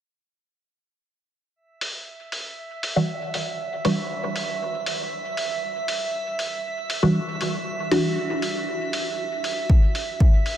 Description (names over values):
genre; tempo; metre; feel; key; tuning
dub techno; 118 BPM; 4/4; straight; E minor; A4 = 440 Hz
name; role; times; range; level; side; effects
drifting glass-harmonics texture; texture; 2.1-10.6 s; E5; -30 LUFS; right 4 dB; chorus, built-in reverb, sidechain pumping
electronic hi-hat; drums; 1.8-10.6 s; none; -31 LUFS; equal; low-pass filter on hats, studio reverb
filtered dub chord stab; stabs; 3.0-8.2 s; E3 to F#4; -25 LUFS; equal; phaser, sidechain pumping, dub echo
electronic kick drum; drums; 9.7-10.3 s; none; -16 LUFS; equal; studio reverb
room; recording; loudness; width
wet huge ambient reverb, RT60 9.1 s; dreamy mix soaked in reverb; -22 LUFS; side -11 dB against mid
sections
1.6-10.6 A section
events
filter sweep on synth stab 1.6-10.6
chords
none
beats
| 1.56 2.07 2.58 3.09 | 3.59 4.10 4.61 5.12 | 5.63 6.14 6.64 7.15 | 7.66 8.17 8.68 9.19 | 9.70 10.20